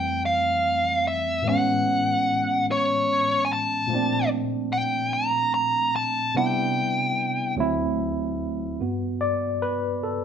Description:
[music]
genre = R&B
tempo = 49 BPM (dotted quarters)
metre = 6/8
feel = straight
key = unclear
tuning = A4 = 439 Hz
[part]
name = bluesy overdriven lead guitar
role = melody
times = 0.0-7.5 s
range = C#5 to Bb5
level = -22 LUFS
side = equal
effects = distortion
[part]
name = tine electric piano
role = accompaniment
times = 0.0-10.2 s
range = D2 to D5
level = -26 LUFS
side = right 1 dB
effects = medium stereo tremolo
[sound]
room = moderate studio reverb, RT60 0.7 s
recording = band playing live in one room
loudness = -22 LUFS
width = side -8 dB against mid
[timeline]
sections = 0.0-8.8 A section; 8.8-10.2 B section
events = tine electric piano solo 8.8-10.2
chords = 0.0 Fmaj9; 1.4 Amaj9; 3.9 Bbmaj9; 6.3 Cmaj9; 7.6 D9; 8.8 Gmaj9

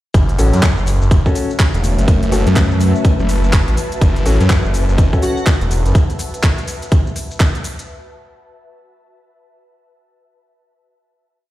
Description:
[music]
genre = bass house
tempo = 124 BPM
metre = 4/4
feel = swing 61% on 16ths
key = F# minor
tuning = A4 = 439 Hz
[part]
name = sweeping resonant pad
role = sustained chords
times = 0.1-7.8 s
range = A3 to C#5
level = -26 LUFS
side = equal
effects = chorus, sidechain pumping
[part]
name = phased detuned saw bass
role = bass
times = 0.1-5.9 s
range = E1 to F#2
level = -15 LUFS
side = equal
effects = phaser, tube saturation, sidechain pumping
[part]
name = electronic kick drum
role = drums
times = 0.1-7.5 s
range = none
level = -14 LUFS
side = equal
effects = none
[part]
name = garage drum kit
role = drums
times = 0.1-7.9 s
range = handclaps, hi-hat, shaker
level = -24 LUFS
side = equal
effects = none
[part]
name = ethereal airy pad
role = texture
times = 1.0-6.0 s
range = F#4 to A5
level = -28 LUFS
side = left 2 dB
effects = ensemble chorus, built-in reverb, sidechain pumping
[part]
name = warm grand piano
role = stabs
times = 0.4-5.4 s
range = C#4 to A4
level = -24 LUFS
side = left 3 dB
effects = sidechain pumping, dub echo
[part]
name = airy dreamy lead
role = melody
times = 5.2-5.4 s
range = F#4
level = -25 LUFS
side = right 2 dB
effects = chorus, dub echo
[sound]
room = digital ambience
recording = played on a big sound system in a bare room, stone room reverb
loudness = -12 LUFS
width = side -15 dB against mid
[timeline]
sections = 0.1-7.9 drop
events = drop 0.1-7.9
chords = 0.1 F#m

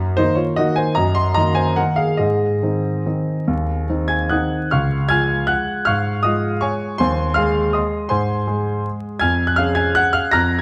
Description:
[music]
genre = classical, piano waltz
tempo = 137-173 BPM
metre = 3/4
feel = rubato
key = Db major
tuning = A4 = 440 Hz
[part]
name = warm grand piano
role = solo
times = 0.0-10.6 s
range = Db2 to Bb6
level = -19 LUFS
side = equal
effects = none
[sound]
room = wet recital hall reverb, RT60 1.4 s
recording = dark, warm production, vinyl crackle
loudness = -19 LUFS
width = mono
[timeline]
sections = 0.0-4.7 A section; 4.7-10.6 B section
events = none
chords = 0.0 Ebm/Gb; 2.2 Ab; 4.7 Db; 7.0 Ab/Eb; 9.2 Db/F

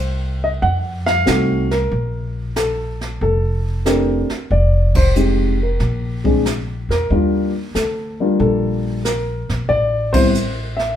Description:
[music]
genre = jazz piano trio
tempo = 93 BPM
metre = 4/4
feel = swing 69% on 8ths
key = unclear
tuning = A4 = 444 Hz
[part]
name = dark baby grand piano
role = melody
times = 0.0-11.0 s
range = G3 to Gb5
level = -19 LUFS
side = left 1 dB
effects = none
[part]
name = upright bass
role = bass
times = 0.0-10.9 s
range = F1 to F2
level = -20 LUFS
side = equal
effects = none
[part]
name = jazz brush drum kit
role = drums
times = 0.6-11.0 s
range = brushed snare drum, hi-hat, kick drum, ride cymbal, snare drum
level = -24 LUFS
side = right 1 dB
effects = none
[sound]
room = moderate studio reverb, RT60 0.8 s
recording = heard from further back in the room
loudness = -16 LUFS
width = side -10 dB against mid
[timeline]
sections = 0.0-11.0 A section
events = band accent 4.8-5.2, 10.0-10.3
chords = 0.0 N.C.; 0.6 F7b9; 1.9 Bbmaj7(no3); 4.5 Fm9; 5.8 Bb7(no3); 7.1 Ebmaj7; 9.7 Am

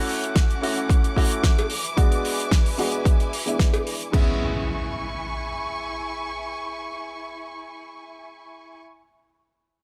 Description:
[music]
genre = nu-disco, nu disco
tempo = 111 BPM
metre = 4/4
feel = straight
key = unclear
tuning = A4 = 440 Hz
[part]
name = warm grand piano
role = accompaniment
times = 0.0-8.8 s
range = G#3 to F#4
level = -31 LUFS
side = equal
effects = sidechain pumping, low-pass filter, tape echo
[part]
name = dark symphonic string section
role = sustained chords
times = 0.0-8.8 s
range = C#4 to D6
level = -34 LUFS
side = equal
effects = sidechain pumping
[part]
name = damped 70s drum kit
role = drums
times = 0.1-4.3 s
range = crash cymbal, hi-hat, snare drum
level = -31 LUFS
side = equal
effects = none
[part]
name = electronic kick drum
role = drums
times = 0.4-4.2 s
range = none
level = -22 LUFS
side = equal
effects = none
[part]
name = cowbell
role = percussion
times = 1.6-3.8 s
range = none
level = -32 LUFS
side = equal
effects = none
[part]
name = impact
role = sound effects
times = 4.3-8.8 s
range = none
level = -34 LUFS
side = equal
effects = none
[sound]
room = small room ambience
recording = none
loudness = -23 LUFS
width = mono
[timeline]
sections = 0.0-4.1 A section; 4.1-8.5 B section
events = filter sweep on grand piano 0.0-4.1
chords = 0.0 Dmaj7; 1.7 E7; 4.1 E6/G#

